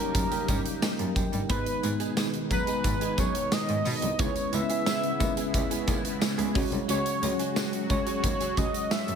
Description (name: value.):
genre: 1980s-style pop.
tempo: 89 BPM.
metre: 4/4.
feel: straight.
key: G# minor.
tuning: A4 = 440 Hz.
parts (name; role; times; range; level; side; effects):
octave-doubled lead; melody; 0.0-9.2 s; A#4 to E5; -32 LUFS; equal; chorus, ping-pong delay.
bell-like tine electric piano; accompaniment; 0.0-9.2 s; F#3 to A#5; -32 LUFS; left 1 dB; medium stereo tremolo.
sweeping resonant pad; sustained chords; 0.0-9.2 s; B2 to G4; -35 LUFS; equal; chorus.
direct-recorded clean electric guitar; riff; 0.0-9.1 s; A#3 to G#4; -38 LUFS; right 7 dB; ensemble chorus, ping-pong delay.
warm cello; bass; 0.1-9.2 s; B#1 to B2; -32 LUFS; equal; none.
big rock drum kit; drums; 0.1-9.2 s; hi-hat, kick drum, snare drum, tambourine; -30 LUFS; right 1 dB; none.
tambourine; percussion; 0.2-9.1 s; none; -44 LUFS; left 9 dB; none.
room: light reverb.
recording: none.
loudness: -25 LUFS.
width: side -7 dB against mid.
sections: 0.0-9.2 A section.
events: tine electric piano fill 0.5-1.5.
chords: 0.0 D#7; 1.5 G#m; 4.2 C#m7; 6.6 F#sus2.